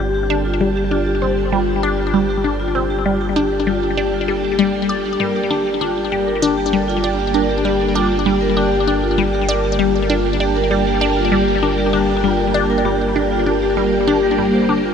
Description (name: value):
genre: ambient, sequencer-driven space music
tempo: 98 BPM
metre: 4/4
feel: straight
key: G minor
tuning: A4 = 442 Hz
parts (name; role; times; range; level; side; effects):
- phased string machine; sustained chords; 0.0-14.9 s; G3 to A5; -22 LUFS; equal; ensemble chorus, phaser, shimmer reverb
- vibraphone with hard mallets; arpeggios; 0.0-14.9 s; G3 to D5; -20 LUFS; left 3 dB; auto-pan, ping-pong delay, shimmer reverb
- resonant blip pluck; riff; 0.0-14.8 s; G3 to D5; -19 LUFS; left 1 dB; phaser, ping-pong delay, shimmer reverb
- warm sub bass; bass; 0.0-14.9 s; G1; -25 LUFS; right 1 dB; none
- wind-like tuned noise texture; texture; 0.0-14.9 s; G5; -28 LUFS; right 6 dB; built-in reverb, shimmer reverb
room: wet huge ambient reverb, RT60 8.1 s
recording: cassette tape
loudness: -15 LUFS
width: side -7 dB against mid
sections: 0.0-14.9 A section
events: fade-in on string machine 0.0-14.9; fade-in on synth texture 0.0-14.9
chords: 0.0 Gm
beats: | 0.30 0.91 1.53 2.14 | 2.75 3.36 3.98 4.59 | 5.20 5.81 6.42 7.04 | 7.65 8.26 8.87 9.48 | 10.10 10.71 11.32 11.93 | 12.55 13.16 13.77 14.38